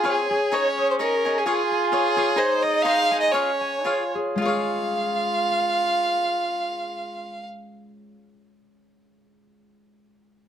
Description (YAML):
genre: mexican folk, mariachi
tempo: 104-130 BPM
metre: 2/4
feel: swing 53% on 8ths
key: Db major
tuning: A4 = 441 Hz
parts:
  - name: rich violin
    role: melody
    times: 0.0-7.4 s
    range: Ab4 to F5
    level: -23 LUFS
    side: equal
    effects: plate reverb
  - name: mellow trumpet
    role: second line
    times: 0.0-7.5 s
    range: C4 to F4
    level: -28 LUFS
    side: right 4 dB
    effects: none
  - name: cavaquinho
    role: accompaniment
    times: 0.0-8.2 s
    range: Eb4 to F5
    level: -28 LUFS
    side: left 3 dB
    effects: none
  - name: concert harp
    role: arpeggios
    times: 0.0-8.2 s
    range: Ab3 to Ab6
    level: -28 LUFS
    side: left 2 dB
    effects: none
room: moderate studio reverb, RT60 0.6 s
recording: none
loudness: -20 LUFS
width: side -9 dB against mid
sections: 0.5-4.4 A section; 4.4-6.7 B section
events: slowing down 2.4-4.4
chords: 0.0 Db; 0.5 Absus4; 1.5 Db; 2.4 Ab; 3.3 Db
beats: 0.05 | 0.52 0.99 | 1.46 1.92 | 2.38 2.85 | 3.34 3.86 | 4.42 4.99 | 5.55 6.12